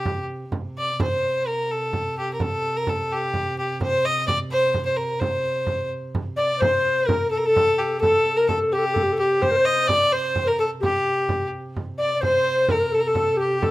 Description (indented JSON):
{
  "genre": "medieval dance",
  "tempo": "86 BPM (dotted quarters)",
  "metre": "6/8",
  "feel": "straight",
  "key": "unclear",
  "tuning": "A4 = 440 Hz",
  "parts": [
    { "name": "clear fiddle", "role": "melody", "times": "0.0-13.7 s", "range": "G4 to Eb5", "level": "-22 LUFS", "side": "equal", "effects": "none" },
    { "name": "warm viola da gamba", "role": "drone", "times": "0.0-13.7 s", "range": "C3", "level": "-35 LUFS", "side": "right 1 dB", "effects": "none" },
    { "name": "frame drum", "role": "percussion", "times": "0.1-13.7 s", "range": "none", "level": "-27 LUFS", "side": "right 2 dB", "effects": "none" },
    { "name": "mellow reedy alto recorder", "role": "second line", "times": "6.4-13.7 s", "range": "G4 to D5", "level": "-21 LUFS", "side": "left 2 dB", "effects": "none" }
  ],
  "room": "moderate studio reverb, RT60 0.7 s",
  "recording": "rough home demo mix",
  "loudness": "-20 LUFS",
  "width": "side -16 dB against mid",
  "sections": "0.0-6.6 A section; 6.6-13.7 A section",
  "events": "none",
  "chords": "none"
}